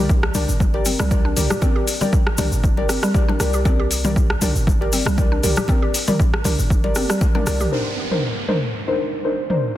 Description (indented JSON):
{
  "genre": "afro house",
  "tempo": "118 BPM",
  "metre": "4/4",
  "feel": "swing 54% on 16ths",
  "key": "unclear",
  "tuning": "A4 = 440 Hz",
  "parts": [
    { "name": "mallet-like synth pluck", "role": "arpeggios", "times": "0.0-7.7 s", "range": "G3 to G4", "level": "-26 LUFS", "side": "left 1 dB", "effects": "chorus, sidechain pumping, dub echo" },
    { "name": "deep mellow chord stab", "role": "stabs", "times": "0.0-9.7 s", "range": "D4 to D5", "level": "-24 LUFS", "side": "left 1 dB", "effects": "chorus, sidechain pumping, dub echo" },
    { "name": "warm 808-style bass", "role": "bass", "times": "0.0-7.7 s", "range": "G1 to C2", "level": "-23 LUFS", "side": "equal", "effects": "sidechain pumping" },
    { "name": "electronic kick drum", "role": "drums", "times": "0.1-7.3 s", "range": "none", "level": "-18 LUFS", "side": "equal", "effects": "none" },
    { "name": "tube shaker", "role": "percussion", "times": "0.1-7.7 s", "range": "none", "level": "-29 LUFS", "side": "left 3 dB", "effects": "none" },
    { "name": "deep house drum kit", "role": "drums", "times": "0.2-9.6 s", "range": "hi-hat, rim click, toms", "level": "-25 LUFS", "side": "equal", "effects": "overdrive, low-pass filter on snare, low-pass filter on hats, low-pass filter on toms" },
    { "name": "congas", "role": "percussion", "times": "0.3-7.6 s", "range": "none", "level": "-29 LUFS", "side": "left 3 dB", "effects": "none" },
    { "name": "downlifter", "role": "sound effects", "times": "7.7-9.8 s", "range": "none", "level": "-28 LUFS", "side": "right 3 dB", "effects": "none" }
  ],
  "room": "light reverb, digital ambience",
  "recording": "dense, heavily limited modern master",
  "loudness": "-17 LUFS",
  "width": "side -13 dB against mid",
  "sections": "0.0-7.7 A section; 7.7-9.8 B section",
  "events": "drum fill 7.0-7.7",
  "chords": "0.0 Gm; 7.7 Cm9"
}